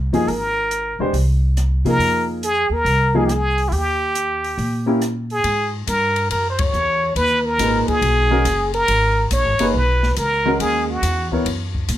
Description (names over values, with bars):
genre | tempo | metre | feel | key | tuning
modal jazz | 140 BPM | 4/4 | swing 66% on 8ths | F minor, G# minor from 5.4 s | A4 = 440 Hz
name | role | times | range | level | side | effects
upright bass | bass | 0.0-12.0 s | E1 to C3 | -21 LUFS | equal | none
warm baby grand piano | accompaniment | 0.1-5.0, 7.6-11.5 s | A#2 to C#5 | -21 LUFS | equal | none
open jazz drum kit | drums | 0.1-12.0 s | hi-hat, kick drum, ride cymbal, rim click, snare drum | -28 LUFS | left 2 dB | none
trumpet with plunger mute | melody | 0.2-11.3 s | E4 to C#5 | -18 LUFS | equal | none
room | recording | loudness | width
light reverb | none | -16 LUFS | side -12 dB against mid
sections
0.0-5.4 A section; 5.4-12.0 B section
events
band accent 6.5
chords
0.0 Fm11; 3.7 Eb; 5.4 G#m9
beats
| 0.28 0.71 1.14 1.57 | 2.00 2.43 2.86 3.29 | 3.72 4.15 4.58 5.01 | 5.44 5.87 6.30 6.73 | 7.16 7.59 8.02 8.45 | 8.88 9.31 9.74 10.17 | 10.60 11.03 11.46 11.89